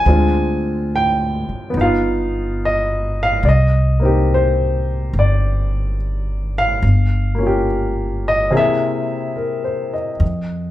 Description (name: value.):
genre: jazz ballad.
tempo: 71 BPM.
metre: 4/4.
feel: swing 69% on 8ths.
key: C minor.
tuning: A4 = 439 Hz.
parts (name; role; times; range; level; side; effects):
warm baby grand piano; accompaniment; 0.0-10.4 s; C3 to Ab5; -18 LUFS; left 1 dB; none.
upright bass; bass; 0.1-10.7 s; G1 to F2; -18 LUFS; equal; none.
room: light reverb.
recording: band playing live in one room.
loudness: -15 LUFS.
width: side -14 dB against mid.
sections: 0.0-10.2 A section.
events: break 8.5-10.2.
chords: 0.1 Dm7b5; 1.7 G7b13; 3.4 Cm9; 6.8 Gm7b5; 8.5 Caug7.